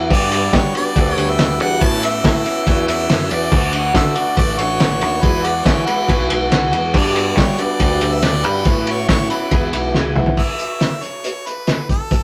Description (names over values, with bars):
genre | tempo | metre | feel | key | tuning
folk rock and heartland rock | 140 BPM | 4/4 | straight | A mixolydian | A4 = 440 Hz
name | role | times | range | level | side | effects
picked steel-string acoustic guitar | accompaniment | 0.0-10.4 s | E2 to G4 | -24 LUFS | equal | none
picked electric bass | bass | 0.0-10.4 s | A1 to G3 | -25 LUFS | equal | none
bright harmonica | melody | 0.1-12.2 s | A4 to A5 | -25 LUFS | equal | none
cloth-damped thuddy drum kit | drums | 0.1-12.2 s | crash cymbal, hi-hat, kick drum, ride cymbal, snare drum, toms | -19 LUFS | equal | none
room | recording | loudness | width
moderate studio reverb, RT60 0.6 s | rough rehearsal-room recording | -17 LUFS | mono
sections
0.0-10.4 A section; 10.4-12.2 B section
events
drum fill 9.9-10.4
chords
0.1 G; 1.8 Aadd9; 3.5 D; 5.2 Eadd9; 6.9 G; 8.7 Aadd9; 9.5 E; 10.4 N.C.